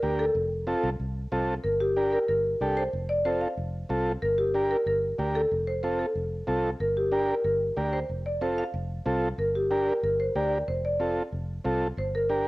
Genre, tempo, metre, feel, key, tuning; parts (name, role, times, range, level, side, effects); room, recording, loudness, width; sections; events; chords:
latin, cumbia; 186 BPM; 4/4; straight; G minor; A4 = 440 Hz
marimba with medium hard mallets; melody; 0.0-12.4 s; G4 to F5; -27 LUFS; equal; cassette tape
overdriven combo organ; accompaniment; 0.0-12.5 s; C4 to Bb4; -28 LUFS; right 1 dB; cassette tape, plate reverb
fingered electric bass; bass; 0.0-12.5 s; F1 to D2; -32 LUFS; equal
moderate small room reverb, RT60 0.6 s; home recording on cassette; -25 LUFS; side -20 dB against mid
0.0-1.6 A section; 1.6-12.5 B section
0.4 F; 1.6 Gm; 2.9 F; 4.2 Gm; 5.5 F; 6.8 Gm; 8.1 F; 9.4 Gm; 10.7 F; 12.0 Gm